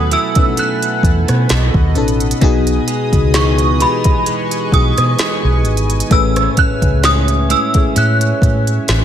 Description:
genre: contemporary R&B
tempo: 65 BPM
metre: 4/4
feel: swing 54% on 16ths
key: E major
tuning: A4 = 440 Hz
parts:
  - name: synth chime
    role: melody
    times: 0.0-9.0 s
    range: B5 to F#6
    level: -18 LUFS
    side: right 1 dB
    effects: ensemble chorus, phaser, digital delay
  - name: FM electric piano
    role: accompaniment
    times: 0.0-9.0 s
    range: A2 to C#5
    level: -20 LUFS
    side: left 5 dB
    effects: chorus
  - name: chorused pulse-width pad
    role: sustained chords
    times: 0.0-9.0 s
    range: A4 to D#6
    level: -24 LUFS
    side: left 1 dB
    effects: none
  - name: direct-recorded clean electric guitar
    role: arpeggios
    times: 0.0-9.0 s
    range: A2 to E4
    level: -22 LUFS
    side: right 9 dB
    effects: spring reverb, digital delay
  - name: vintage muted fingered electric bass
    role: bass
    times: 0.0-9.0 s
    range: G#1 to B2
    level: -15 LUFS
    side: equal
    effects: none
  - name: smooth R&B drum kit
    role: drums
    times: 0.1-9.0 s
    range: hi-hat, kick drum, rim click, snare drum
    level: -16 LUFS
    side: equal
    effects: none
room: little or no reverb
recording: none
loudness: -11 LUFS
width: side -10 dB against mid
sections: 0.0-9.0 A section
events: none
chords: 0.0 B7sus4; 1.5 B7; 2.4 Emaj7/B; 6.1 Amaj7

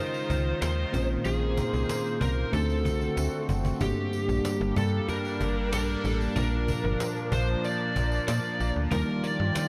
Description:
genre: 1980s-style pop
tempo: 94 BPM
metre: 4/4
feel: straight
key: G minor from 3.8 s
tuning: A4 = 440 Hz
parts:
  - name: lead guitar through a small cranked amp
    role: melody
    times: 0.0-9.7 s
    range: G4 to D5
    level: -34 LUFS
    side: equal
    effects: overdrive
  - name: mellow tine electric piano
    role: accompaniment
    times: 0.0-9.7 s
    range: G2 to Eb5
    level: -35 LUFS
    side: equal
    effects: none
  - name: sweeping resonant pad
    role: sustained chords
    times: 0.0-9.7 s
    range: D3 to C5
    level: -35 LUFS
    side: equal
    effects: chorus
  - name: tambourine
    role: percussion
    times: 0.1-9.7 s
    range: none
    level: -48 LUFS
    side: equal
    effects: none
  - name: slap-like FM bass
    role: bass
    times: 0.3-9.5 s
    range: F#1 to Bb2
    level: -31 LUFS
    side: equal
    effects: none
  - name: cajon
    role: drums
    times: 0.3-9.7 s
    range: none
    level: -37 LUFS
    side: equal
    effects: none
room: moderate huge ambient reverb, RT60 8.5 s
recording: dreamy mix soaked in reverb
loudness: -28 LUFS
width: mono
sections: 0.0-3.8 A section; 3.8-9.7 A section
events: drum fill 3.2-3.8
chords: 0.0 Dbadd9; 0.9 Bbmadd9; 2.5 D7; 3.8 Gm; 6.4 Bb; 8.9 Ebadd9

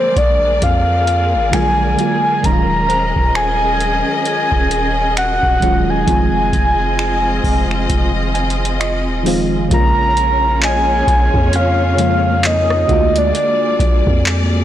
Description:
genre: contemporary R&B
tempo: 66 BPM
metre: 4/4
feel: swing 58% on 16ths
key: Bb minor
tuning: A4 = 440 Hz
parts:
  - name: soft octave-layered synth lead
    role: melody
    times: 0.0-14.5 s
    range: C5 to Bb5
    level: -16 LUFS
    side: equal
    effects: chorus, tape echo
  - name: mellow FM electric piano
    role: accompaniment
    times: 0.0-14.6 s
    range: Db3 to Ab5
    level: -21 LUFS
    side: right 1 dB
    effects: chorus, phaser
  - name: warm studio string section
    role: sustained chords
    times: 0.0-14.6 s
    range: Ab3 to Eb5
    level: -22 LUFS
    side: left 1 dB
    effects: none
  - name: long sustained 808-style bass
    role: bass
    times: 0.2-14.6 s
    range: Eb1 to F2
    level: -19 LUFS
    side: equal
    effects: none
  - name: booming analog drum machine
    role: drums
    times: 0.2-14.5 s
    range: finger snaps, handclaps, hi-hat, kick drum, rim click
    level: -18 LUFS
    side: equal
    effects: soft clipping on snare
  - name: synth chime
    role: texture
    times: 2.9-4.3, 10.6-12.3 s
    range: C5 to Ab5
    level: -32 LUFS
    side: left 2 dB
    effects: none
room: light reverb, digital ambience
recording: blown-out, overdriven recording, overdrive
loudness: -12 LUFS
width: side -11 dB against mid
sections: 0.0-9.7 A section; 9.7-14.6 B section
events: FM electric piano fill 7.9-9.7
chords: 0.0 Bb7b13; 2.4 Ebm11; 6.1 Fm7; 9.7 Bbm7; 12.9 Bb7b13

